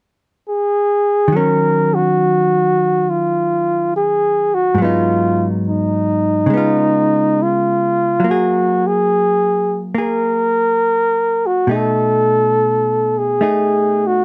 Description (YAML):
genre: jazz ballad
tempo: 69 BPM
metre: 4/4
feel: swing 68% on 8ths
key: Eb minor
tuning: A4 = 435 Hz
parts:
  - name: mellow flugelhorn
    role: melody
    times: 0.5-14.2 s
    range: Eb4 to Bb4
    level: -17 LUFS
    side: equal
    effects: none
  - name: hollow-body jazz guitar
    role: accompaniment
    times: 1.3-14.2 s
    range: Ab2 to Ab4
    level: -21 LUFS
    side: equal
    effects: none
room: light reverb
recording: close, detailed microphones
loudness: -16 LUFS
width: mono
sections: 0.0-1.3 A section; 1.3-14.2 B section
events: none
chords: 0.0 N.C.; 1.3 Ebm9; 4.8 Abm7; 6.5 Db7; 8.2 Gbadd9; 11.7 B6